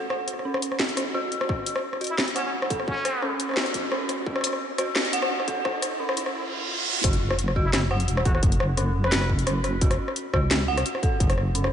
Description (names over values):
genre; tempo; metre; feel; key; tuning
half-time drum and bass; 173 BPM; 4/4; swing 53% on 16ths, half-time; unclear; A4 = 437 Hz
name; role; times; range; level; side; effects
dark detuned synth bell; arpeggios; 0.0-11.7 s; C#4 to F#5; -30 LUFS; right 2 dB; chorus, tremolo, analog delay
drum and bass drum kit; drums; 0.1-11.7 s; hi-hat, rim click, snare drum; -26 LUFS; left 1 dB; none
electronic kick drum; drums; 1.5-11.3 s; none; -25 LUFS; equal; distortion
riser and reverse cymbal; sound effects; 4.6-7.0 s; none; -32 LUFS; right 2 dB; none
trumpet with plunger mute; melody; 2.1-3.4, 7.7-9.3 s; C#4 to B4; -33 LUFS; equal; analog delay
deep soft wobble bass; bass; 7.0-11.7 s; E1 to C#2; -25 LUFS; equal; chorus
room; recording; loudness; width
wet church reverb, RT60 3.6 s; dreamy mix soaked in reverb, high-pass filter, nothing above 10.4 kHz; -22 LUFS; side -9 dB against mid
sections
0.0-7.0 A section; 7.0-11.7 B section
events
build-up 0.0-7.0; filter sweep on synth bell 0.0-7.0; filter sweep 0.0-7.0; riser 4.6-7.0; reverse cymbal 6.3-7.0; drop 7.0-11.7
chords
0.0 F#m